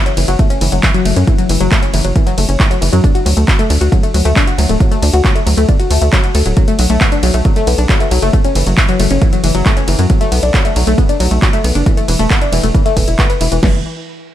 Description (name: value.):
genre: uplifting trance.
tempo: 136 BPM.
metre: 4/4.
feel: straight.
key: F# minor.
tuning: A4 = 439 Hz.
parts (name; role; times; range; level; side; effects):
analog pluck; arpeggios; 0.0-13.8 s; E3 to B4; -16 LUFS; left 3 dB; chorus, phaser, sidechain pumping, digital delay.
punchy analog drum machine; drums; 0.1-13.6 s; handclaps, hi-hat, ride cymbal; -19 LUFS; right 1 dB; none.
tight sequencer bass; bass; 0.2-13.8 s; D1 to F#2; -13 LUFS; right 1 dB; sidechain pumping.
punchy analog drum machine; drums; 0.4-13.7 s; crash cymbal, kick drum, snare drum; -13 LUFS; right 1 dB; none.
room: little or no reverb.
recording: none.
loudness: -10 LUFS.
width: side -12 dB against mid.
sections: 0.0-13.6 A section.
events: drop 0.0-13.6.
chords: 0.0 F#7(no3); 3.0 D; 6.6 B7(no3); 8.3 F#7(no3); 10.1 Bm7; 11.9 N.C.; 13.6 Esus2/F#.